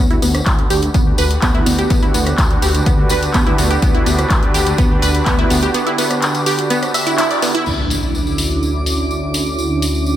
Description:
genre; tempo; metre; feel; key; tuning
progressive house; 125 BPM; 4/4; straight; unclear; A4 = 440 Hz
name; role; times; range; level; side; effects
filtered supersaw swell; sustained chords; 0.0-10.2 s; D3 to B4; -21 LUFS; right 1 dB; sidechain pumping, low-pass filter
wide unison pluck; arpeggios; 0.0-7.6 s; B3 to E5; -19 LUFS; right 1 dB; phaser, sidechain pumping, dub echo
dark detuned saw bass; bass; 0.0-10.2 s; D2; -20 LUFS; equal; sidechain pumping
deep house drum kit; drums; 0.1-9.9 s; crash cymbal, handclaps, hi-hat, rim click; -22 LUFS; left 1 dB; low-pass filter on hats, low-pass filter on snare, low-pass filter on cymbals, low-pass filter on room
tambourine; percussion; 0.2-10.2 s; none; -26 LUFS; left 2 dB; none
electronic kick drum; drums; 0.5-5.4 s; none; -16 LUFS; equal; none
impact; sound effects; 7.7-9.6 s; none; -25 LUFS; equal; none
twinkling granular texture; texture; 7.7-10.2 s; D6; -28 LUFS; right 1 dB; built-in reverb, sidechain pumping
room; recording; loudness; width
light reverb; none; -13 LUFS; side -12 dB against mid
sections
0.0-7.7 A section; 7.7-10.2 B section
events
band accent 7.2; impact 7.7-9.6; filter sweep on supersaw synth 7.7-10.2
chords
0.0 Em7/D (rootless); 7.7 Dmaj9

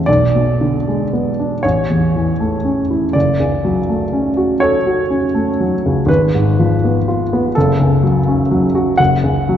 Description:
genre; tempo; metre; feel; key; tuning
classical, romantic nocturne for solo piano; 40 BPM (dotted quarters); 6/8; uneven beats, rubato; unclear; A4 = 438 Hz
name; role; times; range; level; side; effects
warm baby grand piano; solo; 0.0-9.6 s; F#1 to Gb5; -13 LUFS; equal; none
room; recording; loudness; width
wet concert hall reverb, RT60 2.6 s; dark, warm production, nothing above 7.9 kHz; -13 LUFS; side -10 dB against mid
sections
0.0-9.6 A section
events
none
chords
0.1 G#dim/B; 1.6 A; 3.1 F#m; 6.1 Fdim/Ab; 7.6 F#5; 9.0 Gb5

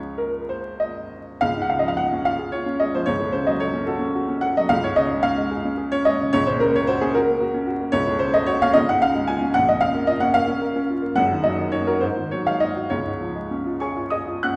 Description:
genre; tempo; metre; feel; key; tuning
classical, romantic character piece for solo piano; 62-76 BPM (dotted quarters); 6/8; rubato; Db major; A4 = 440 Hz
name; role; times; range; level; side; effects
clear upright piano; solo; 0.0-14.6 s; Gb1 to Gb6; -22 LUFS; equal; none
room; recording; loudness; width
wet recital hall reverb, RT60 1.4 s; heard from further back in the room, vinyl crackle; -22 LUFS; mono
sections
0.0-1.4 A section; 1.4-14.6 B section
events
none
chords
0.0 Db; 3.1 Gbm/Db; 4.7 Db; 6.3 Gb/Db; 7.9 Gbm/Db; 8.8 Db; 9.6 Bbm; 11.2 Ebm/Gb; 12.0 Ab5; 12.9 Db

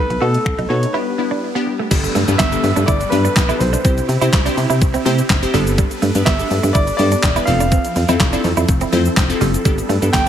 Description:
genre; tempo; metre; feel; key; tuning
dance-pop; 124 BPM; 4/4; straight; unclear; A4 = 437 Hz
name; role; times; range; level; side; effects
warm concert grand piano; melody; 0.0-10.3 s; A4 to G5; -22 LUFS; equal; dub echo
glassy wavetable pluck; accompaniment; 0.0-10.3 s; B3 to C5; -22 LUFS; left 2 dB; chorus, sidechain pumping, dub echo
supersaw chords; sustained chords; 0.0-10.3 s; C3 to B4; -28 LUFS; right 1 dB; phaser, sidechain pumping
direct-recorded clean electric guitar; riff; 0.0-10.3 s; G3 to F#4; -24 LUFS; right 7 dB; wide subtle chorus, dub echo
solid FM bass; bass; 0.0-10.3 s; E1 to C3; -18 LUFS; equal; sidechain pumping
gated 80s digital drum machine; drums; 0.1-10.3 s; crash cymbal, finger snaps, handclaps, hi-hat, kick drum, shaker, snare drum; -18 LUFS; equal; gated reverb, gated reverb snare, overdrive, dub echo
downlifter; sound effects; 1.9-5.8 s; none; -30 LUFS; left 2 dB; none
tube shaker; percussion; 9.7-10.3 s; none; -37 LUFS; left 11 dB; none
room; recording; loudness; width
light reverb; echo-heavy mix; -14 LUFS; side -10 dB against mid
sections
0.0-1.9 A section; 1.9-10.3 B section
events
break 0.9-1.9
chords
0.0 B7; 0.9 G; 1.9 Gadd9; 3.8 C; 5.5 Gadd9; 7.5 Fmaj7; 9.7 Gadd9

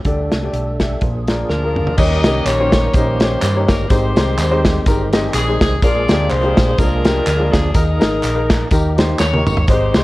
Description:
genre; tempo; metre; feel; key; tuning
uptempo gospel; 125 BPM; 4/4; swing 55% on 8ths; unclear; A4 = 439 Hz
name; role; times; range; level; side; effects
natural country drum kit; drums; 0.0-10.0 s; crash cymbal, hi-hat, kick drum, snare drum, toms; -16 LUFS; equal; none
warm baby grand piano; accompaniment; 0.1-10.0 s; Ab2 to E5; -21 LUFS; left 2 dB; none
tonewheel organ; sustained chords; 0.1-10.0 s; Eb3 to C5; -25 LUFS; right 3 dB; slow rotary speaker, overdrive, chorus vibrato
hollow-body short-scale fingered electric bass; bass; 0.1-10.0 s; G1 to G2; -20 LUFS; equal; tube saturation
bright saxophone section; melody; 1.5-10.0 s; D4 to Eb5; -21 LUFS; left 1 dB; tape echo
tambourine and handclaps; percussion; 2.0-10.0 s; none; -28 LUFS; right 1 dB; none
room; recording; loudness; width
studio reverb; worn, warbling old tape, cassette tape, warbly pitch drift; -13 LUFS; side -18 dB against mid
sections
0.0-2.0 A section; 2.0-10.0 B section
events
drum fill 1.5-2.0, 9.2-9.7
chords
0.1 Dsus4; 1.0 Bb7; 2.0 Eb7; 3.9 Abmaj7; 5.8 Bb7; 7.8 Ebsus4; 8.7 Eb

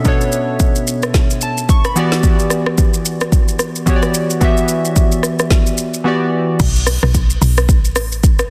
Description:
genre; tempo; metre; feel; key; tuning
amapiano; 110 BPM; 4/4; swing 58% on 16ths; B minor; A4 = 440 Hz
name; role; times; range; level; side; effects
warm analog keys; accompaniment; 0.0-6.6 s; B2 to C#6; -19 LUFS; equal; chorus
deep house drum kit; drums; 0.1-8.5 s; crash cymbal, hi-hat, kick drum, rim click, shaker, snare drum; -16 LUFS; equal; soft clipping on snare
woody log drum bass; bass; 6.6-8.5 s; A1 to B1; -18 LUFS; equal; none
room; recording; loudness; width
light reverb, digital ambience; dense, heavily limited modern master; -15 LUFS; mono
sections
0.0-6.6 A section; 6.6-8.5 B section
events
drop 6.6-8.5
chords
0.0 Bm9; 2.0 Em9; 6.6 B7(no3)

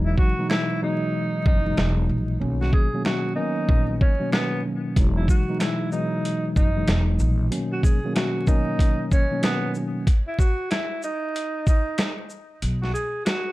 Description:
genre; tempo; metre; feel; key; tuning
hip hop, boom-bap hip-hop; 94 BPM; 4/4; swing 62% on 16ths; E lydian; A4 = 440 Hz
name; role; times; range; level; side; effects
mellow tine electric piano; accompaniment; 0.0-10.1 s; B2 to D#4; -25 LUFS; equal; medium stereo tremolo, high-pass filter, low-pass filter
upright bass; bass; 0.0-7.5, 12.6-12.9 s; E1 to B1; -24 LUFS; equal; none
breathy tenor saxophone; melody; 0.1-13.5 s; B3 to G#4; -28 LUFS; right 1 dB; high-pass filter, low-pass filter, ping-pong delay
dusty soul sampler-style drum kit; drums; 0.2-13.4 s; hi-hat, kick drum, shaker, snare drum; -21 LUFS; equal; none
finger snaps; percussion; 0.5-13.4 s; none; -41 LUFS; right 2 dB; none
room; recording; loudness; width
light reverb; dark, warm production, vinyl crackle; -20 LUFS; side -18 dB against mid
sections
0.0-13.5 A section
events
break 0.0-5.0, 10.1-13.5; kick muted 12.6-13.5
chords
0.0 Emaj9; 2.4 Bmaj9; 5.0 Emaj9; 7.5 Bmaj9; 10.1 N.C.; 12.6 B5

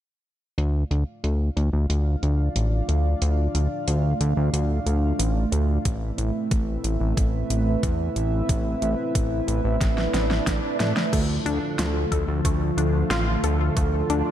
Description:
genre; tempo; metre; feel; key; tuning
synthwave; 91 BPM; 4/4; straight; unclear; A4 = 440 Hz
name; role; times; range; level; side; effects
chorused pulse-width pad; sustained chords; 0.6-14.3 s; D3 to F5; -27 LUFS; right 1 dB; sidechain pumping, shimmer reverb
fat analog bass; bass; 0.6-14.2 s; A1 to A2; -23 LUFS; equal; sidechain pumping
pop drum kit; drums; 0.6-14.2 s; crash cymbal, hi-hat, snare drum; -29 LUFS; equal; overdrive, low-pass filter on hats, low-pass filter on snare, low-pass filter on cymbals, low-pass filter on room
electronic kick drum; drums; 5.9-13.9 s; none; -25 LUFS; equal; overdrive
swell; sound effects; 10.0-11.1 s; none; -31 LUFS; right 3 dB; none
analog pluck; arpeggios; 11.1-14.3 s; A3 to A4; -29 LUFS; left 3 dB; chorus, ping-pong delay, shimmer reverb
room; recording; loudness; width
light reverb; dark, warm production; -21 LUFS; side -11 dB against mid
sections
0.6-11.1 A section; 11.1-14.3 B section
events
filter sweep on drum 0.6-11.1; filter sweep on analog synth bass 0.6-11.1; drum fill 9.8-11.1; swell 10.0-11.1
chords
0.6 Dm; 5.9 Amadd9; 11.1 Dm

